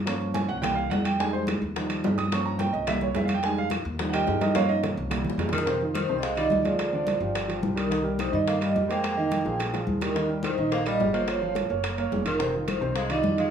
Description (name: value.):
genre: Afro-Cuban jazz.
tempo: 214 BPM.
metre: 4/4.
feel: straight.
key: F minor.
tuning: A4 = 441 Hz.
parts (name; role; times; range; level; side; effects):
upright bass; bass; 0.0-13.5 s; F1 to G2; -33 LUFS; left 1 dB; none.
warm grand piano; accompaniment; 0.1-13.5 s; C3 to Eb6; -28 LUFS; right 3 dB; none.
bongos; percussion; 0.1-13.5 s; none; -36 LUFS; left 7 dB; none.
claves; percussion; 0.1-13.2 s; none; -41 LUFS; left 1 dB; none.
congas; percussion; 0.1-13.4 s; none; -31 LUFS; left 1 dB; none.
timbales; percussion; 0.1-13.5 s; none; -36 LUFS; right 6 dB; none.
vibraphone with soft mallets; melody; 5.5-13.5 s; Bb4 to G5; -28 LUFS; right 2 dB; none.
warm tenor saxophone; second line; 5.5-13.5 s; Eb3 to Bb3; -33 LUFS; left 4 dB; none.
room: wet studio ambience, RT60 0.5 s.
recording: studio reverb.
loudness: -24 LUFS.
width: side -8 dB against mid.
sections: 0.0-5.7 A section; 5.7-13.5 B section.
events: grand piano solo 0.0-5.7; drum fill 4.5-5.7, 9.3-10.2.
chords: 0.1 Gm7b5; 0.6 C7; 1.2 Fm7; 1.8 Ebadd9; 2.3 Gm7b5; 2.9 C7; 3.4 Fm7; 4.0 Ebadd9; 4.5 Gm7b5; 5.1 C7; 5.7 Fm9; 6.8 Ddim; 7.4 Eb69/G; 7.9 Cm7; 9.0 Fm11; 9.6 Bb5; 10.2 Eb6; 11.3 Gm7b5; 11.8 Gb; 12.4 Fm9.